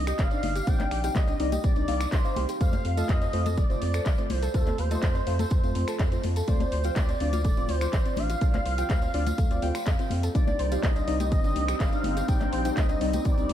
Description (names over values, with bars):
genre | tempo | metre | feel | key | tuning
progressive house | 124 BPM | 4/4 | straight | C dorian | A4 = 437 Hz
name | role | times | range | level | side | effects
expressive synth lead | melody | 0.0-13.5 s | A4 to G5 | -32 LUFS | equal | ensemble chorus, vintage 12-bit sampler grit, analog delay
soft round pluck | arpeggios | 0.0-13.5 s | A3 to F6 | -35 LUFS | equal | wide subtle chorus, cassette tape, sidechain pumping, analog delay
deep mellow chord stab | stabs | 0.0-13.5 s | A3 to G5 | -34 LUFS | left 2 dB | chorus, cassette tape, sidechain pumping, analog delay
saturated sub bass | bass | 0.0-13.5 s | D1 to F2 | -30 LUFS | equal | tube saturation, sidechain pumping
house drum kit | drums | 0.1-13.5 s | finger snaps, handclaps, hi-hat | -38 LUFS | equal | studio reverb
tambourine | percussion | 0.1-13.5 s | none | -47 LUFS | left 2 dB | none
electronic kick drum | drums | 0.2-13.4 s | none | -25 LUFS | equal | studio reverb
congas and cowbell | percussion | 0.4-13.5 s | none | -38 LUFS | left 6 dB | none
filtered supersaw swell | sustained chords | 10.3-13.5 s | G3 to Eb4 | -34 LUFS | equal | phaser, sidechain pumping
room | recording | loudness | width
light reverb | none | -23 LUFS | side -11 dB against mid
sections
0.0-13.5 A section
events
none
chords
0.0 Cmadd9; 2.6 F; 6.5 Dm7; 10.3 Cmadd9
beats
0.19 | 0.67 1.16 1.64 2.12 | 2.61 3.09 3.58 4.06 | 4.54 5.03 5.51 6.00 | 6.48 6.96 7.45 7.93 | 8.41 8.90 9.38 9.87 | 10.35 10.83 11.32 11.80 | 12.29 12.77 13.25